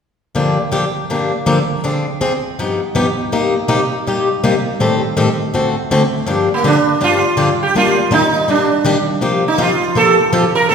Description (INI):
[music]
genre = jazz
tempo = 163 BPM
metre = 4/4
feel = swing 62% on 8ths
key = G minor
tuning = A4 = 440 Hz
[part]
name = picked plugged-in swing-style acoustic guitar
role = accompaniment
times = 0.3-10.7 s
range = G2 to A4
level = -15 LUFS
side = left 2 dB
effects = none
[part]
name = sitar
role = melody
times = 6.5-10.7 s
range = Bb3 to Bb4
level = -13 LUFS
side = right 4 dB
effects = none
[sound]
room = wet recital hall reverb, RT60 1.7 s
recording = recorded in a church or concert hall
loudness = -13 LUFS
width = side -6 dB against mid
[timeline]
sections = 0.4-6.3 A section; 6.3-10.7 B section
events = none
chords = 0.4 Gm7; 1.8 Dm7b5; 2.6 Gaug7; 3.3 Cm7; 4.8 Am7b5; 5.5 D7; 6.3 Gm7; 7.7 Ebmaj9; 9.2 C7sus4